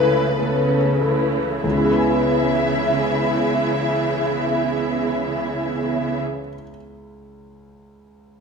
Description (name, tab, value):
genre	cinematic, emotional film score for orchestra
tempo	47 BPM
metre	3/4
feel	rubato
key	C# minor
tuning	A4 = 444 Hz
part	warm symphonic violin section	melody	0.0-6.2 s	B4 to E5	-25 LUFS	left 2 dB	none
part	dark symphonic violin section	second line	0.0-6.2 s	C#4 to B4	-25 LUFS	equal	none
part	clear concert grand piano	accompaniment	0.0-8.4 s	C#2 to G#5	-26 LUFS	left 3 dB	none
part	rich symphonic viola section	accompaniment	0.0-6.2 s	E3 to B3	-25 LUFS	right 5 dB	none
part	concert harp	arpeggios	0.0-6.8 s	C#3 to G#5	-28 LUFS	left 5 dB	none
part	rich symphonic cello section	bass	0.0-6.2 s	C#3	-25 LUFS	right 3 dB	none
room	moderate scoring stage reverb, RT60 1.6 s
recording	minimal, uncompressed stereo recording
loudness	-18 LUFS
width	side -5 dB against mid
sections	0.0-1.6 A section; 1.6-5.4 B section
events	slowing down 0.0-1.6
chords	0.0 Aadd9/C#; 1.6 C#m7